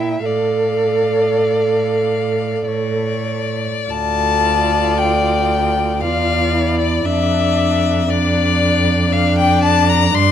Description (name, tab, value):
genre	classical, slow romantic movement for string quartet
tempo	47-59 BPM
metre	3/4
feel	rubato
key	D minor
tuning	A4 = 440 Hz
part	clear violin	melody	0.0-10.3 s	D5 to C6	-19 LUFS	left 8 dB	none
part	rich violin	second line	0.0-10.3 s	C#5 to E5	-24 LUFS	left 2 dB	none
part	warm viola	accompaniment	0.0-10.3 s	D4 to A4	-20 LUFS	right 2 dB	none
part	rich cello	bass	0.0-10.3 s	D2 to A#2	-19 LUFS	right 2 dB	none
room	light reverb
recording	dark, warm production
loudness	-14 LUFS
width	side -9 dB against mid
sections	0.0-3.9 A section; 3.9-10.3 B section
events	none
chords	0.3 Dm/A; 3.9 Dm; 7.0 Dm/F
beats	| 0.26 1.44 2.67 | 3.91 4.98 6.02 | 7.05 8.09 9.12 | 10.13